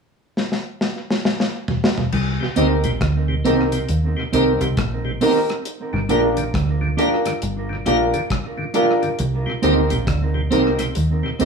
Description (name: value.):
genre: roots reggae.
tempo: 68 BPM.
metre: 4/4.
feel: swing 62% on 16ths.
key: C minor.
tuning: A4 = 440 Hz.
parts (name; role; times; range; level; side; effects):
deep reggae drum kit; drums; 0.4-11.4 s; crash cymbal, hi-hat, kick drum, rim click, snare drum, toms; -23 LUFS; left 1 dB; tape echo.
deep dub fingered electric bass; bass; 2.1-11.4 s; G1 to Eb2; -21 LUFS; right 1 dB; none.
tonewheel organ; accompaniment; 2.4-11.4 s; G2 to F4; -26 LUFS; left 1 dB; overdrive, slow rotary speaker.
mellow electric guitar; accompaniment; 2.6-11.4 s; C4 to Bb4; -22 LUFS; right 7 dB; spring reverb, tape echo.
warm upright piano; stabs; 2.6-11.4 s; C4 to Bb4; -21 LUFS; left 5 dB; none.
room: moderate studio reverb, RT60 0.7 s.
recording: band playing live in one room, studio ambience.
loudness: -17 LUFS.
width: side -5 dB against mid.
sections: 0.0-2.1 A section; 2.1-11.4 B section.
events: drum fill 0.4-2.1.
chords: 0.0 N.C.; 2.1 Cm7; 5.7 Gm7; 9.2 Cm7.